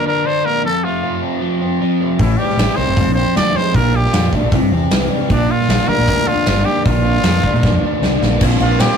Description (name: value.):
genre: indie rock.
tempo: 154 BPM.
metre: 4/4.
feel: straight.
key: unclear.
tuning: A4 = 445 Hz.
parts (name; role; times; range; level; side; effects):
growling trumpet; melody; 0.0-9.0 s; D4 to D5; -19 LUFS; equal; none.
overdriven electric guitar; riff; 0.0-9.0 s; F2 to C5; -18 LUFS; left 1 dB; none.
growling fingered electric bass; bass; 2.2-8.9 s; F1 to Bb2; -17 LUFS; equal; overdrive.
big rock drum kit; drums; 2.2-8.9 s; crash cymbal, hi-hat, kick drum, snare drum; -18 LUFS; right 1 dB; none.
sweeping resonant pad; sustained chords; 8.4-9.0 s; Bb3 to F4; -26 LUFS; equal; none.
mellow tine electric piano; second line; 8.6-9.0 s; F5 to G5; -22 LUFS; left 1 dB; medium stereo tremolo.
room: wet booth ambience, RT60 0.2 s.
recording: rough rehearsal-room recording, warm saturation.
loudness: -13 LUFS.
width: side -7 dB against mid.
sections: 0.0-8.4 A section.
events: drum fill 7.6-8.4.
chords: 0.0 Bb; 0.6 F; 2.2 Am7; 3.0 Fm; 3.7 Bb; 4.5 C; 5.3 Bb; 8.4 Bbsus2.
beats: 0.24 | 0.63 1.02 1.41 1.80 | 2.19 2.58 2.97 3.36 | 3.75 4.13 4.52 4.91 | 5.30 5.69 6.08 6.46 | 6.85 7.24 7.63 8.02 | 8.40 8.79.